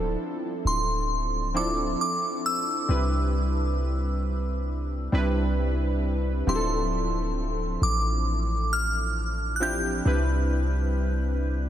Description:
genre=contemporary R&B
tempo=67 BPM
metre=4/4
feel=swing 54% on 16ths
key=D dorian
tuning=A4 = 441 Hz
part: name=warm analog keys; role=accompaniment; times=0.0-11.7 s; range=F3 to B4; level=-29 LUFS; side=equal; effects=chorus
part: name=warm 808-style bass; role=bass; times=0.0-11.7 s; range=D1 to C2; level=-26 LUFS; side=equal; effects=none
part: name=glassy synth bell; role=melody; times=0.7-11.7 s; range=C6 to G6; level=-30 LUFS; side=right 1 dB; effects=chorus, diffuse ambient delay
room=moderate huge ambient reverb, RT60 7.5 s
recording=dreamy mix soaked in reverb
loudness=-24 LUFS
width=side -11 dB against mid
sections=0.0-6.5 A section; 6.5-11.7 B section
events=none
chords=0.0 Dm7; 2.9 Cmaj7; 6.5 Dm7; 10.1 Cmaj7

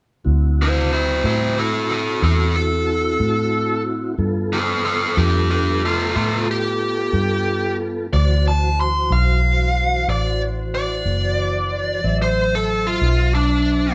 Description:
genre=slow blues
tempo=61 BPM (dotted quarters)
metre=12/8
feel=straight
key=D mixolydian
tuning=A4 = 435 Hz
part: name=mellow tonewheel organ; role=sustained chords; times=0.2-13.9 s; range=E3 to E5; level=-28 LUFS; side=equal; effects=slow rotary speaker
part: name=vintage muted fingered electric bass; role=bass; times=0.3-13.9 s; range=F#1 to A2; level=-23 LUFS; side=equal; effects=none
part: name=biting lead guitar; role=melody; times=0.6-13.9 s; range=A3 to C6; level=-23 LUFS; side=equal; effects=overdrive
room=moderate stone room reverb, RT60 1.4 s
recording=band playing live in one room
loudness=-19 LUFS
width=mono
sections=0.3-13.9 A section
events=lead electric guitar solo 0.3-13.9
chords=0.3 D9; 4.2 G9; 8.1 D9

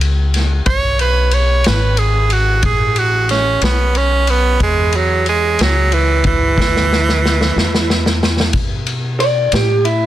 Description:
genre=slow blues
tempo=61 BPM (dotted quarters)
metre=12/8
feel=straight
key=E mixolydian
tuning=A4 = 442 Hz
part: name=upright bass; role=bass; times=0.0-10.1 s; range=G#1 to B2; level=-16 LUFS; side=left 1 dB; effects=none
part: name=vintage drum kit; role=drums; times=0.0-10.0 s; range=kick drum, ride cymbal, snare drum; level=-18 LUFS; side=left 1 dB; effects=none
part: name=edgy tenor saxophone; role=second line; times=0.7-8.2 s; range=E3 to C#5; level=-16 LUFS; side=right 4 dB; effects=digital delay
part: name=electric guitar through a small old amp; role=melody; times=9.2-10.1 s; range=E4 to D5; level=-14 LUFS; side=equal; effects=none
room=small room ambience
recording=dense, heavily limited modern master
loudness=-12 LUFS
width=side -13 dB against mid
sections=0.0-8.5 A section; 8.5-10.1 A section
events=tenor saxophone solo 0.0-8.5; drum fill 6.6-8.5; clean electric guitar solo 8.5-10.1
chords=0.0 B7(no3); 4.6 C#m; 8.5 E7(no3) (rootless)

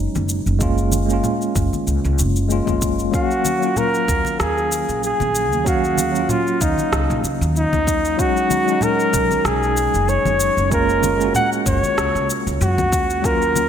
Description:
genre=sunset chillout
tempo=95 BPM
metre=4/4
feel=swing 55% on 16ths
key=unclear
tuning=A4 = 440 Hz
part: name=tine electric piano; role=accompaniment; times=0.0-13.7 s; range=F#3 to F5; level=-22 LUFS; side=moving between left 6 dB and right 6 dB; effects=fast stereo tremolo, auto-pan, digital delay
part: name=upright bass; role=bass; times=0.0-13.7 s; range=F#1 to Gb2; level=-22 LUFS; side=equal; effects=none
part: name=electronic shaker and rim click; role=drums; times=0.2-13.7 s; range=none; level=-27 LUFS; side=equal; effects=gated reverb
part: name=congas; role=percussion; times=0.2-13.7 s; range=none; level=-28 LUFS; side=left 3 dB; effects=none
part: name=electronic kick drum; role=drums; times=0.6-13.4 s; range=none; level=-24 LUFS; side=equal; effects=none
part: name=breathy flugelhorn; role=melody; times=3.1-13.7 s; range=Eb4 to Gb5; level=-19 LUFS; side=equal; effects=ping-pong delay
room=moderate lush hall reverb, RT60 2.0 s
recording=bright 1980s-style digital production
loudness=-16 LUFS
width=side -9 dB against mid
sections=0.0-13.7 A section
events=none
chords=0.0 B69 (rootless); 0.6 Gbmaj7; 3.1 Ebm7; 8.2 B69; 10.7 Gbmaj7

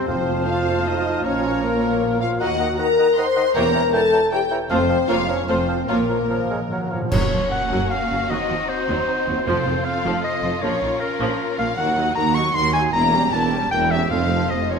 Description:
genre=classical, dramatic, fast romantic movement for symphony orchestra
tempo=155 BPM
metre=3/4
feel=rubato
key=Bb minor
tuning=A4 = 440 Hz
part: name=dark symphonic violin section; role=melody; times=0.0-14.8 s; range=Bb4 to Db6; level=-29 LUFS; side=left 3 dB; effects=none
part: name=clear clarinet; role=second line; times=0.0-14.8 s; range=Bb4 to Db6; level=-25 LUFS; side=left 2 dB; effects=none
part: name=silver concert flute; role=second line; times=0.0-7.0 s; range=A5 to Bb5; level=-34 LUFS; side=equal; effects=none
part: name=warm oboe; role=second line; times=0.0-7.0 s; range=F5 to G5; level=-30 LUFS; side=right 2 dB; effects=none
part: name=warm symphonic violin section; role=second line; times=0.0-14.8 s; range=C4 to C6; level=-28 LUFS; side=left 3 dB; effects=none
part: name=warm bassoon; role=accompaniment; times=0.0-7.1 s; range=Eb3 to Ab3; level=-29 LUFS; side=right 2 dB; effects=none
part: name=warm symphonic viola section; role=accompaniment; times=0.0-14.8 s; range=Eb3 to G4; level=-28 LUFS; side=right 1 dB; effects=none
part: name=mellow French horn section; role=sustained chords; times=0.0-6.9 s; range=Bb3 to C5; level=-20 LUFS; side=left 3 dB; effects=none
part: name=dark symphonic cello section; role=bass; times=0.0-14.8 s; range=Eb2 to Bb2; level=-29 LUFS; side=right 4 dB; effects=none
part: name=rich symphonic double bass section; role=bass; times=0.0-14.8 s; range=E1 to Eb2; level=-29 LUFS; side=right 5 dB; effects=none
part: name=timpani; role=percussion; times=0.1-0.6, 5.9-7.1, 9.5-10.0, 14.1-14.7 s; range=F2 to Bb2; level=-31 LUFS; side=equal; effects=none
part: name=mellow tuba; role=bass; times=7.1-14.8 s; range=E1 to Eb2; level=-28 LUFS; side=right 6 dB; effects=none
part: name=clash cymbals and concert bass drum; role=percussion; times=7.1-7.9 s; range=none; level=-27 LUFS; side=equal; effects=none
room=wet scoring stage reverb, RT60 1.6 s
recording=minimal, uncompressed stereo recording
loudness=-18 LUFS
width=side -5 dB against mid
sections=0.0-7.1 A section; 7.1-14.8 A section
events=timpani fill 5.9-7.1; band accent 7.1-7.5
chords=0.1 F; 1.2 Bbm; 2.4 Ebm; 3.6 Edim7; 4.7 F; 5.1 Bbm/F; 5.5 F; 5.9 Bbm; 7.1 Gb; 8.3 Cdim/Eb; 9.5 F; 10.6 Bbm; 11.8 Ebm; 12.9 Edim7; 14.1 F

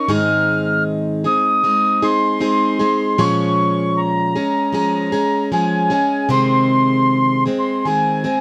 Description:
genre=acoustic folk duo or small band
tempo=77 BPM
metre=4/4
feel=straight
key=unclear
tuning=A4 = 444 Hz
part: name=mellow accordion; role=melody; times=0.0-8.4 s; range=Ab5 to F6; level=-20 LUFS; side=equal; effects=none
part: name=picked plugged-in steel-string acoustic guitar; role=accompaniment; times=0.0-8.4 s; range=Ab2 to Ab4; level=-20 LUFS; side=equal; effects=none
room=moderate studio reverb, RT60 0.7 s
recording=close, detailed microphones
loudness=-17 LUFS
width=mono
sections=0.0-8.4 A section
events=none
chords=0.1 Ab; 3.2 Bbm7; 6.3 Ab/C

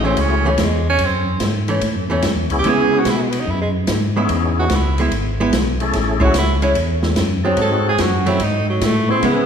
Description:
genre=soul jazz organ trio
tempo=146 BPM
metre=4/4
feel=swing 67% on 8ths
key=C# minor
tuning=A4 = 440 Hz
part: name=clear tenor saxophone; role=melody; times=0.0-9.5 s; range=E3 to A4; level=-21 LUFS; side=right 3 dB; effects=none
part: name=percussive tonewheel organ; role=melody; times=0.0-9.5 s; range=A3 to A4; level=-23 LUFS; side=left 3 dB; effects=slow rotary speaker, overdrive, chorus vibrato
part: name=archtop guitar, miked and amplified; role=accompaniment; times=0.0-9.5 s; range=E3 to E4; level=-21 LUFS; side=right 1 dB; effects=none
part: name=tonewheel organ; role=bass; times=0.0-9.5 s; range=G#1 to C#3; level=-20 LUFS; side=equal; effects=slow rotary speaker
part: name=open jazz drum kit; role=drums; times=0.2-9.4 s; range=hi-hat, kick drum, ride cymbal, snare drum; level=-23 LUFS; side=equal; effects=none
room=moderate scoring stage reverb, RT60 1.7 s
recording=recorded in a church or concert hall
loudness=-15 LUFS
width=side -7 dB against mid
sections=0.0-9.5 A section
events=tenor saxophone solo 0.0-9.5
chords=0.0 F#m7; 2.6 C#m7; 5.9 Amaj7; 7.6 G#7b9

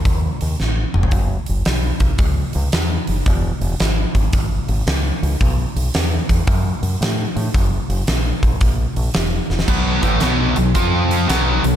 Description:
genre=blues rock power trio and southern rock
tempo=112 BPM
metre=4/4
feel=swing 66% on 8ths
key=B mixolydian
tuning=A4 = 444 Hz
part: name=growling fingered electric bass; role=bass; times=0.1-11.8 s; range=E1 to A2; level=-20 LUFS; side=equal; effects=overdrive
part: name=huge arena drum kit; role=drums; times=0.1-11.7 s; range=crash cymbal, hi-hat, kick drum, snare drum, toms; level=-19 LUFS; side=equal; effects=none
part: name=sludgy distorted guitar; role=riff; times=9.7-11.8 s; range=A2 to F4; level=-16 LUFS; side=equal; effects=overdrive
room=studio ambience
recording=none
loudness=-16 LUFS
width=side -10 dB against mid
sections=0.0-9.7 A section; 9.7-11.8 B section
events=drum fill 0.6-1.1, 9.4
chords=0.0 N.C.; 1.1 F#5; 3.3 E; 5.4 B5; 7.5 F#; 9.7 B5; 10.8 F5

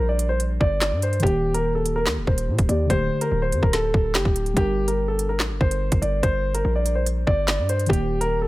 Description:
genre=hip hop, drill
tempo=144 BPM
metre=4/4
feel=half-time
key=G minor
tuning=A4 = 440 Hz
part: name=dark concert grand piano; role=melody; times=0.0-8.5 s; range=G4 to D5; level=-24 LUFS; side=equal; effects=digital delay
part: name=muted felt-like synth keys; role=accompaniment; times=0.0-8.5 s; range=D3 to Bb4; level=-29 LUFS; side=left 1 dB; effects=chorus
part: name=hard-hitting 808-style bass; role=bass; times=0.0-8.5 s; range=D1 to Bb2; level=-24 LUFS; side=equal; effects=none
part: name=drill drum kit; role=drums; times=0.2-8.3 s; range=handclaps, hi-hat, kick drum, snare drum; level=-23 LUFS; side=equal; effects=none
room=digital ambience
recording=none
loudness=-19 LUFS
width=side -18 dB against mid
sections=0.0-8.5 A section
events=none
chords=0.0 Gm; 1.2 Eb; 2.9 Dsus4; 4.6 Gm; 7.9 Eb

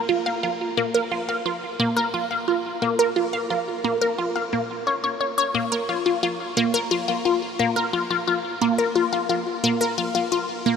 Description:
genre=ambient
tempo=88 BPM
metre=4/4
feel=straight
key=Bb minor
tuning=A4 = 439 Hz
part: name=resonant blip pluck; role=solo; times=0.1-10.7 s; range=Bb3 to F5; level=-21 LUFS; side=left 1 dB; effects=phaser, tape echo
room=wet huge ambient reverb, RT60 7.6 s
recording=none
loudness=-21 LUFS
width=side -6 dB against mid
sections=0.0-10.8 A section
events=none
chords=none

